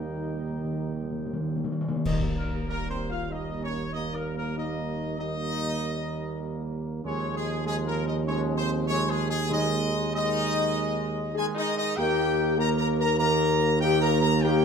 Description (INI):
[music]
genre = classical, ceremonial fanfare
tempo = 97 BPM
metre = 4/4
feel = straight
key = Eb mixolydian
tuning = A4 = 440 Hz
[part]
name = clear trumpet section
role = melody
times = 0.0-14.6 s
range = Ab4 to Bb5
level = -30 LUFS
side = equal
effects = none
[part]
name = clear trombone section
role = sustained chords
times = 0.0-14.6 s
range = Eb3 to Bb3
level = -33 LUFS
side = right 3 dB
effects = none
[part]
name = mellow French horn section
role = sustained chords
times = 0.0-14.6 s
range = Ab3 to Bb4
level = -32 LUFS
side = left 8 dB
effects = none
[part]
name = mellow tuba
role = bass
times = 0.0-14.6 s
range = Eb2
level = -29 LUFS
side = right 3 dB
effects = none
[part]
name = timpani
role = percussion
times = 0.0-2.0, 9.5-10.4 s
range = Eb3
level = -32 LUFS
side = left 1 dB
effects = none
[part]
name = clash cymbals and concert bass drum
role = percussion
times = 2.1-3.3 s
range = none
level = -34 LUFS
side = left 1 dB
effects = none
[sound]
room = moderate large studio reverb, RT60 1.3 s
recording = minimal, uncompressed stereo recording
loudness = -25 LUFS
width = side -6 dB against mid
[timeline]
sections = 0.0-2.1 A section; 2.1-14.6 A section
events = timpani fill 0.0-2.1; band accent 2.1-2.7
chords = 0.0 Eb; 7.1 Eb13sus4; 9.5 Ab5/Eb; 12.0 Eb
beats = 0.13 0.77 1.41 | 2.06 2.68 3.31 3.93 | 4.58 5.20 5.82 6.44 | 7.05 7.66 8.27 8.89 | 9.52 10.14 10.76 11.36 | 11.97 12.59 13.20 13.82 | 14.44